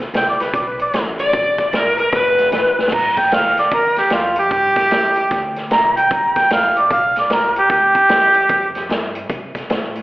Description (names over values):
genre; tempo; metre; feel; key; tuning
electric blues shuffle; 151 BPM; 4/4; swing 63% on 8ths; G mixolydian; A4 = 440 Hz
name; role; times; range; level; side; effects
upright bass; bass; 0.0-10.0 s; E1 to C3; -33 LUFS; equal; none
vintage drum kit; drums; 0.0-10.0 s; crash cymbal, hi-hat, kick drum, snare drum; -22 LUFS; equal; none
mellow harmonica; second line; 0.2-8.9 s; F4 to Bb5; -14 LUFS; right 1 dB; slapback echo
overdriven slide guitar; melody; 1.2-2.9 s; Bb4 to D5; -15 LUFS; left 1 dB; slapback echo
room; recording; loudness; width
light reverb, studio ambience; live gig heard through the venue's PA, recital hall reverb, telephone sound; -13 LUFS; side -18 dB against mid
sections
0.0-2.9 A section; 2.9-10.0 B section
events
drum fill 2.7; harmonica solo 2.9-10.0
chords
0.0 G7; 9.3 N.C.